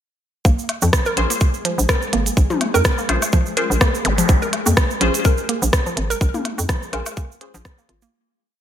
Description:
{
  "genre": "minimal techno",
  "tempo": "125 BPM",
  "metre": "4/4",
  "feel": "swing 55% on 16ths",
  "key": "Bb minor",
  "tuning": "A4 = 437 Hz",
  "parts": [
    { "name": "hollow square pluck", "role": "riff", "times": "0.5-8.1 s", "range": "F3 to Bb4", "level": "-25 LUFS", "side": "equal", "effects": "chorus, sidechain pumping, ping-pong delay" },
    { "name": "hollow knocking FM bass", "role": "bass", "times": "0.5-8.1 s", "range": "Ab1 to F2", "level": "-20 LUFS", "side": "equal", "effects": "sidechain pumping" },
    { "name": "electronic kick drum", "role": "drums", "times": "0.5-7.8 s", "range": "none", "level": "-17 LUFS", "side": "equal", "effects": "none" },
    { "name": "cabasa", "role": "percussion", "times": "0.5-8.1 s", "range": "none", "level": "-27 LUFS", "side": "right 7 dB", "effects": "none" },
    { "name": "flickering grainy texture", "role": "texture", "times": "1.3-8.1 s", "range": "Ab3 to Ab4", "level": "-30 LUFS", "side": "left 1 dB", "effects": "built-in reverb, wide subtle chorus, sidechain pumping" },
    { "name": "minimal click drum kit", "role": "drums", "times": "0.7-8.1 s", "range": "hi-hat, rim click", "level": "-22 LUFS", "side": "equal", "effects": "gated reverb" },
    { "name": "electronic woodblock and toms", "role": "percussion", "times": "0.7-7.1 s", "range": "none", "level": "-26 LUFS", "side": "left 5 dB", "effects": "gated reverb, ping-pong delay" },
    { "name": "filtered dub chord stab", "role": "stabs", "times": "1.2-7.5 s", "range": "Db4 to C5", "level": "-24 LUFS", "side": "left 3 dB", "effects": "phaser, lush chorus, ping-pong delay" },
    { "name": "zap", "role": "sound effects", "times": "4.0-4.2 s", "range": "none", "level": "-26 LUFS", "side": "equal", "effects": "none" }
  ],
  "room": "light reverb",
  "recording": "bright 1980s-style digital production",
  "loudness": "-16 LUFS",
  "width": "side -10 dB against mid",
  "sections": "0.5-8.1 drop",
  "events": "drop 0.5-8.1; fade-out 5.6-8.1",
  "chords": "0.5 Bb7(no3)",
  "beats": "| 0.45 0.93 1.41 1.89 | 2.37 2.85 3.33 3.81 | 4.29 4.77 5.25 5.73 | 6.21 6.69 7.17 7.65"
}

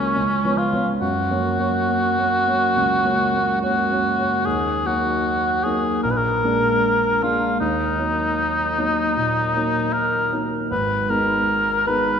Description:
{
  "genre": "classical, romantic duo for cor anglais and grand piano",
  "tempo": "68-78 BPM",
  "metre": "4/4",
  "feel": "rubato",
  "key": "F# major, Eb minor from 4.5 s",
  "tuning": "A4 = 440 Hz",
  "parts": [
    { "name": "warm cor anglais", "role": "melody", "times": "0.0-12.2 s", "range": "C#4 to Cb5", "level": "-20 LUFS", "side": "left 1 dB", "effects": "none" },
    { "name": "warm grand piano", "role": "accompaniment", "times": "0.0-12.2 s", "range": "Ab1 to Eb4", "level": "-23 LUFS", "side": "right 1 dB", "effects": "none" }
  ],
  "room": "wet concert hall reverb, RT60 2.4 s",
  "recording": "none",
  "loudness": "-18 LUFS",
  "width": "side -7 dB against mid",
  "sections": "0.0-4.5 A section; 4.5-12.2 B section",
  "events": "none",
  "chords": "0.2 C#7; 1.0 F#; 4.5 Ebm; 6.0 Bb7; 7.6 Ebm; 10.7 Abm",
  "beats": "0.16 | 1.01 1.88 2.75 3.61 | 4.45 5.25 6.04 6.83 | 7.61 8.38 9.16 9.94 | 10.71 11.48"
}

